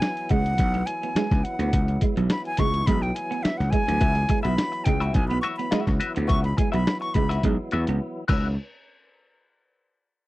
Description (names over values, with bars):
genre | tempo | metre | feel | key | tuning
funk | 105 BPM | 4/4 | straight | C# minor | A4 = 440 Hz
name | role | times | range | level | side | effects
breathy silver concert flute | melody | 0.0-7.4 s | E5 to C#6 | -28 LUFS | equal | none
percussive tonewheel organ | sustained chords | 0.0-8.6 s | D#3 to E4 | -36 LUFS | left 1 dB | slow rotary speaker
lo-fi sampler-style drum kit | drums | 0.0-8.4 s | crash cymbal, hi-hat, kick drum, snare drum | -24 LUFS | equal | none
semi-hollow electric guitar | riff | 0.3-8.5 s | F#3 to C#4 | -31 LUFS | right 6 dB | spring reverb
gritty slap bass | bass | 0.3-8.6 s | B1 to E2 | -24 LUFS | equal | overdrive
clean electric guitar | accompaniment | 4.0-8.5 s | F#4 to E5 | -29 LUFS | left 5 dB | wah
room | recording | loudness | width
little or no reverb | dry, close 1970s-style studio recording | -21 LUFS | side -18 dB against mid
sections
0.0-8.6 A section; 8.6-10.3 B section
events
break 0.0-4.0; flute solo 0.0-8.6; silent gap 8.0-8.6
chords
0.0 C#m7; 8.3 C#m11; 8.6 N.C.